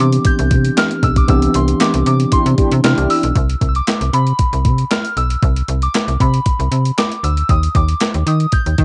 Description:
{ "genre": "early-eighties boogie funk", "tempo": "116 BPM", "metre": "4/4", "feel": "straight", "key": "C major", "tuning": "A4 = 442 Hz", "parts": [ { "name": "soft synth bell", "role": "melody", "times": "0.0-8.8 s", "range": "B5 to G6", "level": "-23 LUFS", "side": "equal", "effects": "chorus, cassette tape" }, { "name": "mellow tine electric piano", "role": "accompaniment", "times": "0.0-3.3 s", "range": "E3 to G4", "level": "-21 LUFS", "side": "equal", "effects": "overdrive, cassette tape" }, { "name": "slap-like FM bass", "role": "bass", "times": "0.0-8.8 s", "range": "B1 to Eb3", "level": "-18 LUFS", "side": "equal", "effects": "none" }, { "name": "clean 12-bit digital drum machine", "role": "drums", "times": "0.1-8.8 s", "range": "handclaps, hi-hat, kick drum, snare drum", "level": "-19 LUFS", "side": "equal", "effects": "none" }, { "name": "mellow synth brass", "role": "second line", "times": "2.3-3.2 s", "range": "D4 to G4", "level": "-22 LUFS", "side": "equal", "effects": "chorus, cassette tape" } ], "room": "little or no reverb", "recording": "home recording on cassette, nothing above 10.6 kHz", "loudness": "-15 LUFS", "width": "mono", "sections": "0.0-3.4 A section; 3.4-8.8 B section", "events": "band accent 1.3-3.4", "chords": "0.0 Cmaj9; 7.5 Ebmaj7" }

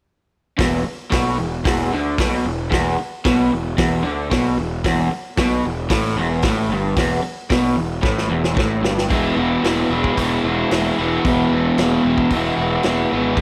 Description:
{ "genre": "garage rock duo or trio", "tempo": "113 BPM", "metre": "4/4", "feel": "straight", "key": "E major from 9.1 s", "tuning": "A4 = 438 Hz", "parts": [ { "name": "crunchy overdriven guitar", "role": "riff", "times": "0.6-13.4 s", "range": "E2 to E4", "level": "-21 LUFS", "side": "equal", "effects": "none" }, { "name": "fuzz picked electric bass", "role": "bass", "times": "0.6-13.4 s", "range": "E1 to D2", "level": "-28 LUFS", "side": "equal", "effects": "overdrive" }, { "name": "vintage drum kit", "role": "drums", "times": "0.6-13.4 s", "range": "hi-hat, kick drum, snare drum", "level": "-25 LUFS", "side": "equal", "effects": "none" } ], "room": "light reverb, studio reverb", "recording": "none", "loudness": "-19 LUFS", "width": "mono", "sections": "0.6-9.1 A section; 9.1-13.4 B section", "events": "drum fill 8.0-9.1", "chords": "0.6 E5; 9.1 E" }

